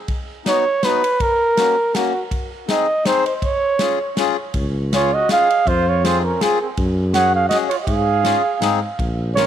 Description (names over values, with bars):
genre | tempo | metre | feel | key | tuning
alpine folk, alpine dance band | 162 BPM | 3/4 | swing 55% on 8ths | Db major | A4 = 441 Hz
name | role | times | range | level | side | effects
natural country drum kit | drums | 0.1-9.5 s | kick drum, ride cymbal, snare drum | -25 LUFS | left 1 dB | none
mellow flugelhorn | melody | 0.5-9.5 s | Gb4 to Gb5 | -18 LUFS | right 2 dB | tape echo
accordion | accompaniment | 0.5-9.5 s | Bb3 to Bb4 | -23 LUFS | left 12 dB | none
mellow tuba | bass | 4.5-9.5 s | Bb1 to Ab2 | -21 LUFS | equal | none
mellow trumpet | second line | 4.9-9.5 s | C4 to Db5 | -25 LUFS | right 11 dB | none
room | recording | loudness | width
moderate spring reverb, RT60 1.9 s, studio ambience | 1960s-style stereo with parts hard left and right | -16 LUFS | side -10 dB against mid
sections
0.0-9.5 A section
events
none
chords
0.1 Cb; 1.2 Gb/Bb; 2.3 Ab; 3.4 Db; 5.7 Fm; 6.8 Gbsus2; 7.9 Db/Ab; 8.6 Ab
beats
| 0.09 0.47 0.84 | 1.21 1.58 1.95 | 2.32 2.69 3.06 | 3.43 3.80 4.17 | 4.55 4.92 5.29 | 5.67 6.04 6.41 | 6.77 7.14 7.51 | 7.87 8.24 8.62 | 8.99 9.37